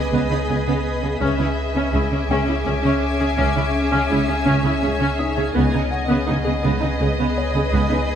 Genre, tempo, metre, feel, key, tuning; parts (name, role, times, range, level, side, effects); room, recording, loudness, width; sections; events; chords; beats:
cinematic, suspense film score; 83 BPM; 3/4; straight; C# minor; A4 = 440 Hz
rich studio violin section; melody; 0.0-8.2 s; D#5 to E5; -28 LUFS; left 3 dB
rich studio viola section; accompaniment; 0.0-8.0 s; B3 to G#4; -23 LUFS; equal
shimmering ambient pad; sustained chords; 0.0-8.2 s; C#4 to G#5; -25 LUFS; left 2 dB; chorus, built-in reverb
pure sine sub bass; drone; 0.0-8.2 s; C#2; -26 LUFS; equal
felt-muted upright piano; texture; 0.0-8.2 s; D#4 to D#6; -32 LUFS; left 3 dB
rich studio violin section; texture; 0.0-5.2 s; G#5 to D6; -33 LUFS; left 3 dB
warm studio cello section; bass; 0.1-8.0 s; C#3; -25 LUFS; right 2 dB
warm studio double bass section; bass; 0.1-7.8 s; C#2; -26 LUFS; right 3 dB
wet scoring stage reverb, RT60 1.8 s; -18 LUFS; side -9 dB against mid
0.0-8.2 A section
0.0 G#m/C#; 1.2 C#m; 5.6 G#m/C#
0.49 | 1.22 1.94 2.66 | 3.38 4.11 4.83 | 5.55 6.28 7.00 | 7.72